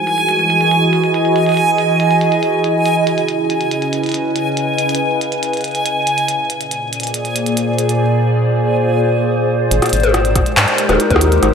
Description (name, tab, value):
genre	IDM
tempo	140 BPM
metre	4/4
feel	straight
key	unclear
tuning	A4 = 440 Hz
part	warbly tape-like pad	sustained chords	0.0-11.5 s	Bb2 to D#5	-16 LUFS	right 1 dB	chorus, built-in reverb, phaser, vintage 12-bit sampler grit
part	backwards swelling texture	texture	0.0-8.0 s	Ab5	-18 LUFS	right 1 dB	built-in reverb
part	glitchy drum kit	drums	0.1-11.5 s	handclaps, hi-hat, rim click, toms	-18 LUFS	equal	overdrive, low-pass filter on snare, low-pass filter on hats, low-pass filter on toms, low-pass filter on room, slapback echo
part	rubbery square bass	bass	9.7-11.5 s	Eb1 to Ab2	-16 LUFS	left 1 dB	none
part	electronic kick drum	drums	10.4-11.2 s	none	-19 LUFS	left 1 dB	overdrive
room	wet lush hall reverb, RT60 1.8 s, digital ambience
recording	big arena sound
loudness	-13 LUFS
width	side -6 dB against mid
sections	0.0-9.7 A section; 9.7-11.5 B section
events	filter sweep on ambient pad 0.0-9.7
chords	0.0 Emaj7; 2.9 Dbm7; 6.3 Bb7; 9.7 Abmaj7